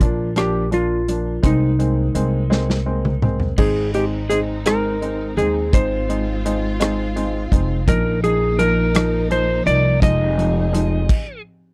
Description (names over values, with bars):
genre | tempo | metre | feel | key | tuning
six-eight pop ballad | 56 BPM (dotted quarters) | 6/8 | straight | unclear | A4 = 439 Hz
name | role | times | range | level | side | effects
clean lap steel guitar | melody | 0.0-11.4 s | Eb4 to Eb5 | -24 LUFS | equal | none
clear upright piano | accompaniment | 0.0-11.0 s | F3 to Eb4 | -26 LUFS | equal | none
upright bass | bass | 0.0-11.1 s | F1 to Eb2 | -24 LUFS | equal | none
modern studio drum kit | drums | 0.0-11.3 s | crash cymbal, hi-hat, kick drum, rim click, snare drum, toms | -22 LUFS | equal | none
warm studio string section | sustained chords | 3.6-11.1 s | F3 to Ab4 | -32 LUFS | equal | none
room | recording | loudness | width
little or no reverb | dry, close 1970s-style studio recording | -19 LUFS | mono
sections
0.0-3.6 A section; 3.6-11.7 B section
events
drum fill 2.5-3.6; stop 11.1-11.7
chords
0.0 Bb; 1.4 Abadd9/C; 3.6 Ab; 7.9 Bbsus4; 10.0 Fm7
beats
0.37 | 1.44 2.51 | 3.58 4.66 | 5.73 6.80 | 7.87 8.95 | 10.02 11.09